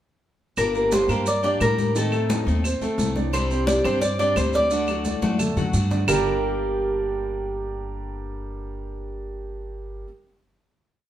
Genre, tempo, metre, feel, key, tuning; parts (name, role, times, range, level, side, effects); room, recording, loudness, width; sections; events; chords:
latin, Cuban son and guajira; 174 BPM; 4/4; straight; G harmonic minor; A4 = 440 Hz
Cuban tres; melody; 0.6-10.0 s; A4 to D5; -24 LUFS; left 1 dB
picked steel-string acoustic guitar; accompaniment; 0.6-10.1 s; G2 to G4; -30 LUFS; left 4 dB
upright bass; bass; 0.6-10.0 s; G1 to A2; -27 LUFS; equal
claves; percussion; 0.6-6.2 s; -32 LUFS; right 1 dB
congas; percussion; 0.6-6.2 s; -29 LUFS; left 3 dB
maracas; percussion; 0.6-6.2 s; -35 LUFS; right 3 dB
warm concert grand piano; arpeggios; 0.7-10.0 s; D3 to G5; -27 LUFS; right 4 dB
moderate large studio reverb, RT60 0.9 s; band playing live in one room; -20 LUFS; side -11 dB against mid
0.6-6.1 verse; 6.1-8.8 final chord
drum fill 5.1-6.1
0.6 Gm; 2.0 Adim; 3.3 Csus2; 4.7 D; 6.1 Gm